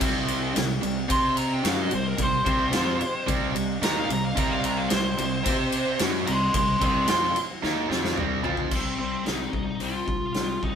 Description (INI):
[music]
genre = hard rock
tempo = 110 BPM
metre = 4/4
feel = straight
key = C minor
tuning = A4 = 441 Hz
[part]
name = sweeping resonant pad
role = sustained chords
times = 0.0-8.7 s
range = C4 to D5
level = -41 LUFS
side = left 2 dB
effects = none
[part]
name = cranked stack guitar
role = riff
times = 0.0-8.7 s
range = C3 to C5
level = -28 LUFS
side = right 7 dB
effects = overdrive
[part]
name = crunchy overdriven guitar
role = riff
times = 0.0-10.8 s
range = C3 to C5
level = -30 LUFS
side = left 8 dB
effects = none
[part]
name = fuzz fingered electric bass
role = bass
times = 0.0-10.8 s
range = C2 to C3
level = -34 LUFS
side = equal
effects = overdrive
[part]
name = huge arena drum kit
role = drums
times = 0.0-10.8 s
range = crash cymbal, hi-hat, kick drum, ride cymbal, snare drum, toms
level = -28 LUFS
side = equal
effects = none
[part]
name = high-gain lead guitar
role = melody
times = 1.1-10.8 s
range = C4 to C6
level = -27 LUFS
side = equal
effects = distortion
[sound]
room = moderate studio reverb, RT60 0.5 s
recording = band playing live in one room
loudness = -22 LUFS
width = side -8 dB against mid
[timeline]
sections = 0.0-8.7 A section; 8.7-10.8 B section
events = lead electric guitar solo 0.0-8.7; drum fill 7.6-8.7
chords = 0.0 Cm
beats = | 0.01 0.56 1.10 1.65 | 2.19 2.73 3.27 3.82 | 4.36 4.90 5.45 5.99 | 6.53 7.08 7.62 8.16 | 8.71 9.26 9.80 10.35